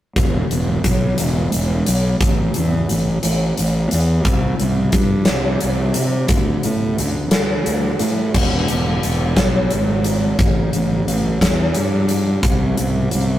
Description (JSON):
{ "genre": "quiet-loud alternative rock", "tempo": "59 BPM (dotted quarters)", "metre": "6/8", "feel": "straight", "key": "E minor", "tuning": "A4 = 440 Hz", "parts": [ { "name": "fuzz fingered electric bass", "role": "bass", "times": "0.2-13.4 s", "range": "E1 to C3", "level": "-18 LUFS", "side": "equal", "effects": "overdrive" }, { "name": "huge arena drum kit", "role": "drums", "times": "0.2-13.3 s", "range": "crash cymbal, hi-hat, kick drum, snare drum", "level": "-19 LUFS", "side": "equal", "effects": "none" } ], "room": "light reverb", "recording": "rough rehearsal-room recording, tube saturation", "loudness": "-15 LUFS", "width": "side -13 dB against mid", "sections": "0.2-8.3 A section; 8.3-13.4 B section", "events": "none", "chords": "none" }